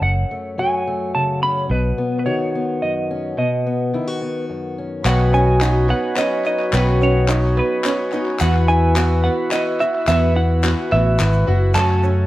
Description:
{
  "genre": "indie folk with a building arrangement",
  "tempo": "107 BPM",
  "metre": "3/4",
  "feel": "straight",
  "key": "unclear",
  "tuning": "A4 = 440 Hz",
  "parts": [
    { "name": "semi-hollow electric guitar", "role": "melody", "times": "0.0-12.3 s", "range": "B4 to B5", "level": "-22 LUFS", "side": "right 2 dB", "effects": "harmonic tremolo" },
    { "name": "fingerpicked acoustic archtop guitar", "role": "accompaniment", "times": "0.0-5.1 s", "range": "F#2 to F#4", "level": "-22 LUFS", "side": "left 2 dB", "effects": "none" },
    { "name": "fingered electric bass", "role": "bass", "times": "0.0-1.9, 5.0-12.3 s", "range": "F#1 to F#2", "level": "-16 LUFS", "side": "equal", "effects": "none" },
    { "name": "picked twelve-string acoustic guitar", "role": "accompaniment", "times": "5.0-12.3 s", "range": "F#2 to F#4", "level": "-22 LUFS", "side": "left 2 dB", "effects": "none" },
    { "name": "hand-pumped harmonium", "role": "sustained chords", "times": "5.0-12.3 s", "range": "F#4 to B5", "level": "-30 LUFS", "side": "right 2 dB", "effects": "none" },
    { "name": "open-back banjo", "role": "arpeggios", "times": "5.1-12.3 s", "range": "A3 to F#4", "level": "-25 LUFS", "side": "right 4 dB", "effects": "none" },
    { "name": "group handclap", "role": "percussion", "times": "5.1-12.0 s", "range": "none", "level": "-26 LUFS", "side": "left 3 dB", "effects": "none" },
    { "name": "tube shaker", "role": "percussion", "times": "5.1-12.1 s", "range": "none", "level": "-41 LUFS", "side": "right 8 dB", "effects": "none" }
  ],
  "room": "light reverb",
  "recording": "worn, warbling old tape, cassette tape, warbly pitch drift",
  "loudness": "-16 LUFS",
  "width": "side -16 dB against mid",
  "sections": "0.0-5.1 A section; 5.1-12.3 B section",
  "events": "none",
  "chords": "0.0 F#m; 1.7 Badd9; 8.4 Esus2; 11.8 F#m"
}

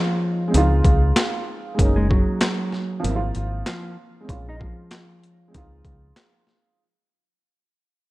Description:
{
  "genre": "hip hop, boom-bap hip-hop",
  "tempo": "96 BPM",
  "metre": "4/4",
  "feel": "swing 61% on 16ths",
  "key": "unclear",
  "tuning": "A4 = 440 Hz",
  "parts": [
    { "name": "mellow electric guitar", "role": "melody", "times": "0.0-5.7 s", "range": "F3 to Eb5", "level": "-27 LUFS", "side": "equal", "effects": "spring reverb, high-pass filter, low-pass filter, tape echo" },
    { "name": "dark upright piano", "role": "accompaniment", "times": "0.0-6.8 s", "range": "F3 to F4", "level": "-26 LUFS", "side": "right 2 dB", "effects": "cassette tape, high-pass filter, low-pass filter" },
    { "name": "deep dub picked electric bass", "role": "bass", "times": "0.5-6.1 s", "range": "Gb1 to Db2", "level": "-21 LUFS", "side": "equal", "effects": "none" },
    { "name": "boom bap sampler-style drum kit", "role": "drums", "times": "0.5-6.6 s", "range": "handclaps, hi-hat, kick drum, snare drum", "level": "-22 LUFS", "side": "equal", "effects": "overdrive" }
  ],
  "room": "little or no reverb",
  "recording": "none",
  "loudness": "-18 LUFS",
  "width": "side -19 dB against mid",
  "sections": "0.0-6.8 A section",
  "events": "fade-out 0.0-6.8",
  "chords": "0.0 Bbm9 (rootless); 0.5 Dbmaj9; 1.8 Gb6; 3.0 Ab13; 4.3 Bbm9; 5.5 Dbmaj9"
}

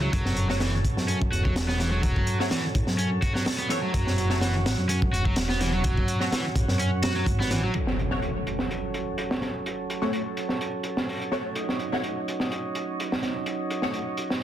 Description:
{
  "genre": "breakbeat, breaks",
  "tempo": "126 BPM",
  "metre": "4/4",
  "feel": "swing 53% on 16ths",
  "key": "F# dorian",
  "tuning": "A4 = 439 Hz",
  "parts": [
    { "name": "tonewheel organ", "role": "sustained chords", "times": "0.0-14.4 s", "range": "F#3 to A4", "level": "-32 LUFS", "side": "right 2 dB", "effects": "slow rotary speaker, sidechain pumping, low-pass filter" },
    { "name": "cranked stack guitar", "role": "riff", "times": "0.0-7.7 s", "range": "E3 to F#4", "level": "-30 LUFS", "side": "equal", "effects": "overdrive, tube saturation, dub echo" },
    { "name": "fat analog bass", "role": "bass", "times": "0.0-7.7 s", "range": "E1 to F#2", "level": "-27 LUFS", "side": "equal", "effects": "none" },
    { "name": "crunchy breakbeat drum kit", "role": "drums", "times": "0.1-14.4 s", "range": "hi-hat, kick drum, snare drum", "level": "-27 LUFS", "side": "equal", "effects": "low-pass filter on kick, low-pass filter on hats, low-pass filter on cymbals, low-pass filter on snare, low-pass filter on room" },
    { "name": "band-passed chord stab", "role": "stabs", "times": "0.5-14.0 s", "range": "A3 to C#5", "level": "-34 LUFS", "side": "left 1 dB", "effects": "phaser, ensemble chorus, dub echo" },
    { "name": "impact", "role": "sound effects", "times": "7.7-9.7 s", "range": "none", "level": "-32 LUFS", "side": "equal", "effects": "none" }
  ],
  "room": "moderate small room reverb, RT60 0.5 s",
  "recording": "dense, heavily limited modern master",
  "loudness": "-24 LUFS",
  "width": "side -11 dB against mid",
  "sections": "0.0-7.8 A section; 7.8-14.4 B section",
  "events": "impact 7.8-9.7; filter sweep on tonewheel organ 7.8-14.4",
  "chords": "0.0 F#m"
}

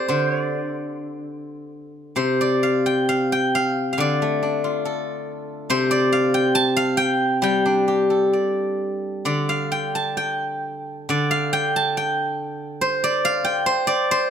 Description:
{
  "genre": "chinese traditional, Chinese solo plucked strings",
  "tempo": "62-70 BPM",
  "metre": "2/4",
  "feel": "rubato",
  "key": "D yu mode",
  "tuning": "A4 = 440 Hz",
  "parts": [
    { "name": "steel-string zither", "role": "solo", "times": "0.0-14.3 s", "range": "C3 to A5", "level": "-19 LUFS", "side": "equal", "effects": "none" }
  ],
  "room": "little or no reverb",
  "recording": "close, detailed microphones",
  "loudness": "-19 LUFS",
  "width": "side -8 dB against mid",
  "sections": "0.0-2.2 A section; 2.2-14.3 B section",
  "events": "none",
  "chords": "none"
}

